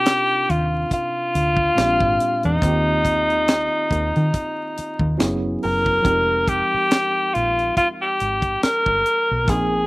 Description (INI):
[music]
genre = R&B, neo-soul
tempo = 70 BPM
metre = 4/4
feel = swing 56% on 16ths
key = F dorian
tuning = A4 = 436 Hz
[part]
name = warm tenor saxophone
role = melody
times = 0.0-9.9 s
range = Eb4 to Bb4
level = -19 LUFS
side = equal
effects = slapback echo
[part]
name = tine electric piano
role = accompaniment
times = 0.0-9.9 s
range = Bb2 to Bb4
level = -28 LUFS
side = right 2 dB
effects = overdrive, medium stereo tremolo
[part]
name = tight funk drum kit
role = drums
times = 0.1-9.7 s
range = finger snaps, hi-hat, kick drum, snare drum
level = -22 LUFS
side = equal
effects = none
[part]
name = deep dub fingered electric bass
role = bass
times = 0.5-9.9 s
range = F1 to Eb3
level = -23 LUFS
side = equal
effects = none
[sound]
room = little or no reverb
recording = recorded outdoors, with no room sound, vinyl crackle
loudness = -17 LUFS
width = side -22 dB against mid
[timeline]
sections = 0.0-9.9 A section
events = none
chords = 0.0 Cm11; 1.8 Bb13; 2.6 Eb69; 5.2 Gb9sus4; 6.0 Fm11